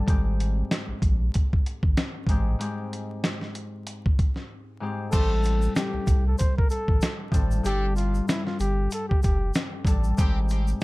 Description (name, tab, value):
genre	hip hop, boom-bap hip-hop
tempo	95 BPM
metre	4/4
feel	swing 56% on 16ths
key	unclear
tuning	A4 = 441 Hz
part	concert harp	accompaniment	0.0-10.8 s	G2 to A4	-32 LUFS	left 2 dB	cassette tape, high-pass filter, low-pass filter
part	warm sub bass	bass	0.0-10.7 s	F1 to C2	-24 LUFS	equal	none
part	dusty soul sampler-style drum kit	drums	0.1-10.7 s	crash cymbal, hi-hat, kick drum, snare drum	-24 LUFS	equal	none
part	trumpet with bucket mute	melody	5.1-9.5 s	E4 to C5	-31 LUFS	left 1 dB	high-pass filter, low-pass filter, tape echo
part	brilliant trumpet section	stabs	5.1-10.4 s	A3 to C5	-38 LUFS	left 1 dB	high-pass filter, low-pass filter, tape echo
part	tube shaker	percussion	5.1-10.8 s	none	-46 LUFS	left 4 dB	none
room	little or no reverb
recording	dark, warm production, vinyl crackle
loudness	-22 LUFS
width	side -21 dB against mid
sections	0.0-5.1 A section; 5.1-10.8 B section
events	break 2.6-5.1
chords	0.1 Abmaj7; 5.1 Am7; 7.7 Gsus2; 10.2 Abmaj7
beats	| 0.07 0.70 1.34 1.97 | 2.60 3.23 3.86 4.50 | 5.13 5.76 6.39 7.02 | 7.65 8.28 8.92 9.55 | 10.18 10.81